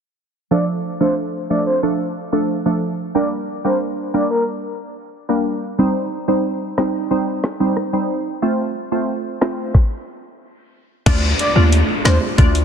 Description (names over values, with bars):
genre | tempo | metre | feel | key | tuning
dancehall | 91 BPM | 4/4 | straight | unclear | A4 = 440 Hz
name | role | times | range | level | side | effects
breathy flute-like synth lead | melody | 0.5-4.4, 11.4-12.2 s | Bb4 to D5 | -23 LUFS | equal | chorus, ping-pong delay
glassy wavetable pluck | accompaniment | 0.5-12.6 s | F3 to D5 | -19 LUFS | right 1 dB | chorus
island pop drum kit | drums | 6.8-12.6 s | crash cymbal, hi-hat, kick drum, rim click, snare drum | -17 LUFS | left 1 dB | none
hard-hitting 808-style bass | bass | 11.1-12.6 s | D2 to Eb2 | -14 LUFS | left 1 dB | none
downlifter | sound effects | 11.1-12.6 s | none | -23 LUFS | right 1 dB | none
bongos | percussion | 12.0-12.4 s | none | -30 LUFS | right 8 dB | none
room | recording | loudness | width
light reverb | dense, heavily limited modern master, low-pass filter | -16 LUFS | side -7 dB against mid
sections
0.5-11.1 A section; 11.1-12.6 B section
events
filter sweep 0.5-11.1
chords
0.5 Dm; 3.2 Gm; 5.8 Cm; 8.4 F; 11.1 Dm